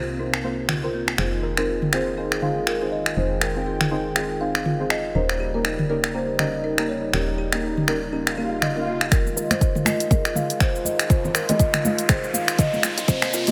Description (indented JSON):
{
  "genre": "afro house",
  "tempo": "121 BPM",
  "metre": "4/4",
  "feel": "swing 58% on 16ths",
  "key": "F minor",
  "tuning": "A4 = 439 Hz",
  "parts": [
    { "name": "warm analog pad", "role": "sustained chords", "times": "0.0-13.5 s", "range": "C3 to G5", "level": "-35 LUFS", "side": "equal", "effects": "chorus, sidechain pumping" },
    { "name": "kalimba", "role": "arpeggios", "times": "0.0-13.5 s", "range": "Bb3 to F5", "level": "-32 LUFS", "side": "equal", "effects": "vintage 12-bit sampler grit, sidechain pumping, low-pass filter, digital delay" },
    { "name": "deep mellow chord stab", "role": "stabs", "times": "0.0-13.5 s", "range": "G3 to C5", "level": "-32 LUFS", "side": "equal", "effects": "chorus, cassette tape, sidechain pumping, digital delay" },
    { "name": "woody FM bass", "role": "bass", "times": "0.0-13.5 s", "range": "Eb1 to C2", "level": "-34 LUFS", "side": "equal", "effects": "tube saturation, sidechain pumping, high-pass filter" },
    { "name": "afro-pop drum kit", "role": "drums", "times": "0.3-13.5 s", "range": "cabasa, finger snaps, hi-hat, toms", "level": "-27 LUFS", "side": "equal", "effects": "none" },
    { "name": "marimba with soft mallets", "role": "melody", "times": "1.2-13.5 s", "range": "G4 to F5", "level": "-31 LUFS", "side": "equal", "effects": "digital delay" },
    { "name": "swell and riser", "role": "sound effects", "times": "8.3-13.5 s", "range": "none", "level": "-34 LUFS", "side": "equal", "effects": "none" },
    { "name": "electronic kick drum", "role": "drums", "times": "9.1-13.2 s", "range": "none", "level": "-22 LUFS", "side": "equal", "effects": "overdrive" },
    { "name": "congas", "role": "percussion", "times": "9.3-13.5 s", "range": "none", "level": "-29 LUFS", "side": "equal", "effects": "none" }
  ],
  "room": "moderate lush hall reverb, RT60 2.0 s, digital ambience",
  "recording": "high-pass filter",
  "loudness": "-22 LUFS",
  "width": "mono",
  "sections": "0.0-9.1 A section; 9.1-13.5 B section",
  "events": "filter sweep on kalimba 0.0-9.1, 9.1-13.5; swell 8.3-9.1; build-up 9.1-13.5; riser 9.1-13.5; filter sweep 9.1-13.5",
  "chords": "0.0 C7sus4; 1.2 Fm7; 5.2 Eb7; 9.1 Fm7"
}